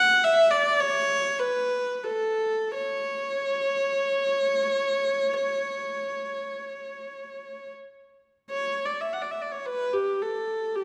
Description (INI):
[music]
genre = classical, free, expressive piece for unaccompanied viola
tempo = 30-57 BPM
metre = 4/4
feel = rubato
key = unclear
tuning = A4 = 440 Hz
[part]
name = dark viola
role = solo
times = 0.0-10.8 s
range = G4 to F#5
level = -26 LUFS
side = equal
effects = none
[sound]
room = wet scoring stage reverb, RT60 1.6 s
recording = dark, warm production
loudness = -26 LUFS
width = mono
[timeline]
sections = 0.0-8.5 A section; 8.5-10.8 B section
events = none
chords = none